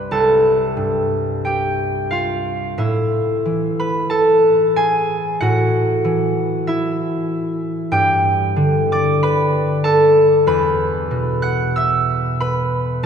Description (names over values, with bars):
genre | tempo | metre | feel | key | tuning
classical, solo harp piece | 93 BPM | 4/4 | uneven beats, rubato | unclear | A4 = 440 Hz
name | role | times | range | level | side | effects
concert harp | solo | 0.0-13.1 s | C2 to F#6 | -15 LUFS | equal | none
room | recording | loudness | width
wet cathedral reverb, RT60 4.3 s | minimal, uncompressed stereo recording | -15 LUFS | side -7 dB against mid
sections
0.0-13.1 A section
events
none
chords
0.1 Gadd9/C; 2.8 Asus2; 5.4 Eadd9/A; 7.9 G69; 10.5 Em9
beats
| 0.12 0.78 1.44 2.10 | 2.75 3.43 4.11 4.76 | 5.40 6.04 6.67 7.29 | 7.91 8.56 9.23 9.85 | 10.47 11.11 11.77 12.40 | 13.02